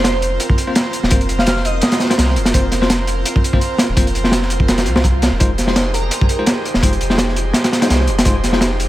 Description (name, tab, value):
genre	drum and bass, jungle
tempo	168 BPM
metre	4/4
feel	swing 55% on 16ths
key	unclear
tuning	A4 = 439 Hz
part	airy dreamy lead	melody	0.0-2.0, 5.7-6.4 s	Bb4 to F5	-26 LUFS	right 1 dB	chorus, dub echo
part	airy breathy pad	sustained chords	0.0-8.9 s	C4 to C5	-23 LUFS	right 2 dB	chorus
part	soft dub sub bass	bass	0.0-8.9 s	Eb1 to C2	-19 LUFS	equal	none
part	crunchy breakbeat drum kit	drums	0.0-8.9 s	hi-hat, kick drum, snare drum	-15 LUFS	equal	none
part	bell-like tine electric piano	stabs	0.7-8.6 s	Ab3 to C5	-25 LUFS	left 3 dB	fast stereo tremolo, dub echo
part	swell	sound effects	4.8-5.4 s	none	-31 LUFS	right 4 dB	none
room	small room reverb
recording	none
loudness	-13 LUFS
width	side -15 dB against mid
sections	0.0-8.9 A section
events	swell 4.8-5.4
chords	0.0 Bbsus2; 5.4 Fm7